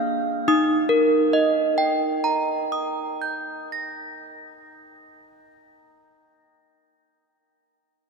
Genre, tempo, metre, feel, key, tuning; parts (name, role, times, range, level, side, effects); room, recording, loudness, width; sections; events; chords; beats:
classical, tune for handbells; 52 BPM; 4/4; straight; Eb major; A4 = 439 Hz
desk bells; solo; 0.0-6.6 s; Bb3 to Bb6; -20 LUFS; right 1 dB
wet cathedral reverb, RT60 5.6 s; -20 LUFS; side -4 dB against mid
0.5-5.1 A section
0.5 Eb
| 0.48 1.65 2.82 3.97